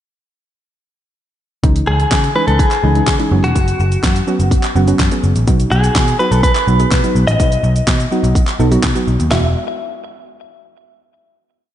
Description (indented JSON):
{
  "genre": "dance-pop",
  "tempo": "125 BPM",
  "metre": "4/4",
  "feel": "straight",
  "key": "E major",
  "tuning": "A4 = 445 Hz",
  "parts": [
    { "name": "soft round pluck", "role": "accompaniment", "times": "1.6-9.5 s", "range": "E3 to A4", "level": "-19 LUFS", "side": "right 2 dB", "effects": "chorus, sidechain pumping" },
    { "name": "vintage muted picked electric bass", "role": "bass", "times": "1.6-9.5 s", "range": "E1 to C#3", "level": "-15 LUFS", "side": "equal", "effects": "sidechain pumping" },
    { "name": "pop drum kit", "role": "drums", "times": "1.6-9.4 s", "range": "handclaps, hi-hat, kick drum, shaker, snare drum, toms", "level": "-17 LUFS", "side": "equal", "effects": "none" },
    { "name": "direct-recorded clean electric guitar", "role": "melody", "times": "1.9-9.5 s", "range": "F#4 to E5", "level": "-19 LUFS", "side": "left 1 dB", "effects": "spring reverb, ping-pong delay" }
  ],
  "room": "moderate lush hall reverb, RT60 2.2 s",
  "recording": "dreamy mix soaked in reverb, nothing above 10.3 kHz",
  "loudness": "-12 LUFS",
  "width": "side -11 dB against mid",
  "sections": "1.6-9.3 pre-chorus; 9.3-11.2 final chord",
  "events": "none",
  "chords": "1.6 C#madd9; 3.3 F#sus4; 5.5 B; 9.3 Eadd9"
}